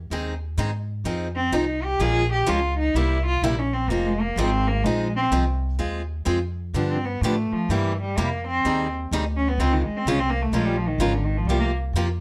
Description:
acoustic string swing (jazz manouche); 127 BPM; 4/4; swing 64% on 8ths; F minor; A4 = 439 Hz
upright bass; bass; 0.0-12.2 s; F1 to A2; -28 LUFS; equal
picked steel-string acoustic guitar; accompaniment; 0.1-12.1 s; C3 to Bb4; -28 LUFS; equal
rich cello; melody; 1.4-11.7 s; Db3 to Ab4; -27 LUFS; equal
light reverb; -24 LUFS; mono
0.0-5.8 A section; 5.8-12.2 A section
cello solo 0.0-5.8, 5.8-12.2
0.1 Ab; 1.1 Fm7; 2.0 Bbm7; 2.9 C7; 3.9 Fm7; 5.8 Ab6; 6.7 G7; 7.7 C7/G; 8.6 Abmaj7; 9.6 Dbmaj7; 10.5 Bbm7; 11.5 C7sus4

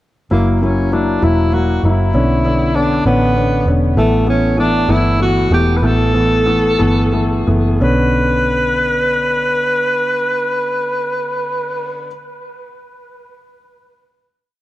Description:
six-eight pop ballad; 57-66 BPM (dotted quarters); 6/8; straight; B minor; A4 = 440 Hz
breathy tenor saxophone; melody; 0.3-12.1 s; A3 to B4; -17 LUFS; equal; analog delay
felt-muted upright piano; accompaniment; 0.3-12.1 s; D3 to E4; -17 LUFS; left 2 dB
vintage muted fingered electric bass; bass; 0.3-12.1 s; E1 to B1; -17 LUFS; equal
moderate lush hall reverb, RT60 1.9 s, studio ambience; dark, warm production; -12 LUFS; side -15 dB against mid
0.3-7.8 pre-chorus; 7.8-12.0 final chord
slowing down 4.0-7.8
0.3 F#7; 2.1 Bmadd9; 4.0 Asus2; 7.8 Bmadd9

